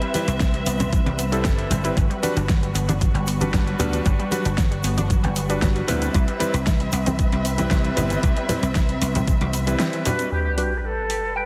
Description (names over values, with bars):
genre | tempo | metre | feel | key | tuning
nu-disco, nu disco | 115 BPM | 4/4 | straight | G major | A4 = 440 Hz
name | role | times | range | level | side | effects
clear electric grand piano | accompaniment | 0.0-10.7 s | G3 to B4 | -29 LUFS | equal | low-pass filter, analog delay
dark chamber string section | sustained chords | 0.0-11.5 s | G3 to E5 | -33 LUFS | equal | sidechain pumping, low-pass filter
unison pluck | arpeggios | 0.0-10.3 s | E3 to E4 | -34 LUFS | equal | sidechain pumping, tape echo
pop drum kit | drums | 0.0-11.2 s | hi-hat, snare drum | -31 LUFS | equal | overdrive
congas and egg shaker | percussion | 0.1-10.3 s | none | -31 LUFS | equal | none
dry thumbed slap bass | bass | 0.3-9.7 s | G1 to D2 | -27 LUFS | equal | none
electronic kick drum | drums | 0.4-9.4 s | none | -23 LUFS | equal | overdrive
concert flute | melody | 10.1-11.5 s | G4 to B4 | -28 LUFS | equal | tape echo
electric guitar with an envelope filter | riff | 10.3-11.4 s | D4 to G5 | -33 LUFS | equal | analog chorus, low-pass filter
sub drop | sound effects | 10.3-11.5 s | none | -29 LUFS | equal | none
room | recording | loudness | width
light reverb | heavily compressed radio sound | -22 LUFS | mono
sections
0.0-10.3 A section; 10.3-11.5 B section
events
impact 10.3-11.5; filter sweep on clean electric guitar 10.3-11.5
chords
0.0 Cmaj7; 2.0 Gmaj7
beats
0.40 0.93 1.45 | 1.97 2.49 3.01 3.53 | 4.06 4.58 5.10 5.62 | 6.14 6.67 7.19 7.71 | 8.23 8.75 9.27 9.79 | 10.32 10.84 11.36